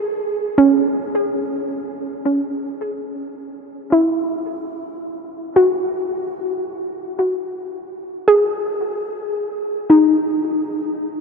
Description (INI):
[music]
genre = ambient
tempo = 55 BPM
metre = 4/4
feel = straight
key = E major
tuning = A4 = 439 Hz
[part]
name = soft round pluck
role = solo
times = 0.0-11.2 s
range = C#4 to G#4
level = -18 LUFS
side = equal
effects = chorus, tape echo
[sound]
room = wet huge ambient reverb, RT60 8.3 s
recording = none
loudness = -17 LUFS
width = side -5 dB against mid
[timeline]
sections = 0.0-3.4 A section; 3.4-11.2 B section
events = none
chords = 0.0 C#5; 3.4 Emaj9